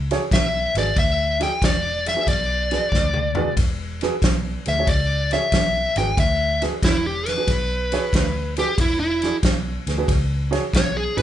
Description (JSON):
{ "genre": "electric blues shuffle", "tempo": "92 BPM", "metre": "4/4", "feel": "swing 67% on 8ths", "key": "E mixolydian", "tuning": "A4 = 442 Hz", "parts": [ { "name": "vintage muted fingered electric bass", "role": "bass", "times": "0.0-11.2 s", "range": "E1 to D2", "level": "-26 LUFS", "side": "equal", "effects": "none" }, { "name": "dark grand piano", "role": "accompaniment", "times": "0.1-11.2 s", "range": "D4 to D5", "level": "-27 LUFS", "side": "right 4 dB", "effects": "none" }, { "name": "natural country drum kit", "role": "drums", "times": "0.1-11.2 s", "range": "kick drum, ride cymbal, snare drum, toms", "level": "-23 LUFS", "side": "equal", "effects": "none" }, { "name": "smooth overdriven lead guitar", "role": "melody", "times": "0.3-11.2 s", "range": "E4 to G5", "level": "-22 LUFS", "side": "left 1 dB", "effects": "none" } ], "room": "light reverb", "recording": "band playing live in one room, nothing above 10.4 kHz", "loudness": "-18 LUFS", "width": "side -11 dB against mid", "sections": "0.0-3.6 A section; 3.6-11.2 B section", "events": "drum fill 2.9-3.6; lead electric guitar solo 3.6-11.2", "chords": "0.0 E9" }